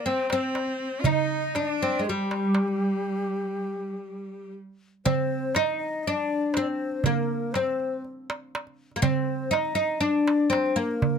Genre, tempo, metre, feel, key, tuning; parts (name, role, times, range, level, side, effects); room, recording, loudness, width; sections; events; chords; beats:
Arabic maqam ensemble; 120 BPM; 4/4; straight; G minor; A4 = 440 Hz
oud; melody; 0.0-11.2 s; G3 to Eb4; -26 LUFS; left 1 dB
breathy reedy ney; second line; 0.0-11.2 s; G4 to Eb5; -32 LUFS; left 4 dB
clear cello; second line; 0.0-4.6 s; G3 to F4; -32 LUFS; right 3 dB
darbuka; percussion; 0.1-11.2 s; -27 LUFS; right 6 dB
light reverb; close, detailed microphones; -24 LUFS; side -6 dB against mid
0.0-5.1 A section; 5.1-11.2 B section
break 3.1-5.1
0.07 0.57 | 1.06 1.56 2.06 2.56 | 3.06 3.56 4.06 4.55 | 5.05 5.55 6.05 6.55 | 7.04 7.54 8.04 8.54 | 9.03 9.53 10.03 10.53 | 11.02